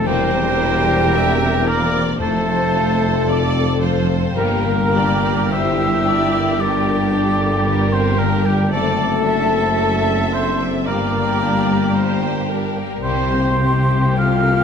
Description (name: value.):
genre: classical, slow romantic movement for symphony orchestra.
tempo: 56 BPM.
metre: 4/4.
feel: rubato.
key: unclear.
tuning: A4 = 441 Hz.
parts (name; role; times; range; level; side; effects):
warm studio violin section; melody; 0.0-14.6 s; G4 to Bb4; -25 LUFS; left 2 dB; none.
mellow silver concert flute; second line; 0.0-14.6 s; G5 to F6; -24 LUFS; equal; none.
warm oboe; second line; 0.0-14.6 s; G4 to F5; -25 LUFS; right 1 dB; none.
warm studio violin section; second line; 0.0-14.6 s; G3 to G4; -28 LUFS; left 4 dB; none.
warm studio viola section; accompaniment; 0.0-14.6 s; G4 to E5; -26 LUFS; right 2 dB; none.
dark French horn section; sustained chords; 0.0-14.6 s; G3 to F4; -24 LUFS; left 4 dB; none.
concert harp; arpeggios; 0.0-14.6 s; E2 to G5; -25 LUFS; left 10 dB; none.
dark tuba; bass; 0.0-14.6 s; E1 to C2; -24 LUFS; right 4 dB; none.
rich studio double bass section; bass; 0.0-14.6 s; E1 to C2; -27 LUFS; right 4 dB; none.
warm studio cello section; bass; 0.0-14.6 s; E2 to C3; -24 LUFS; right 2 dB; none.
timpani; percussion; 2.2-3.8 s; F2; -34 LUFS; left 3 dB; none.
room: wet scoring stage reverb, RT60 1.5 s.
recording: none.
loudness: -15 LUFS.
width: side -7 dB against mid.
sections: 0.0-14.6 A section.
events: none.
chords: 0.1 C7/E; 2.2 F; 4.4 Gm; 8.7 D7/F#; 10.9 Gm; 13.0 C7(no3).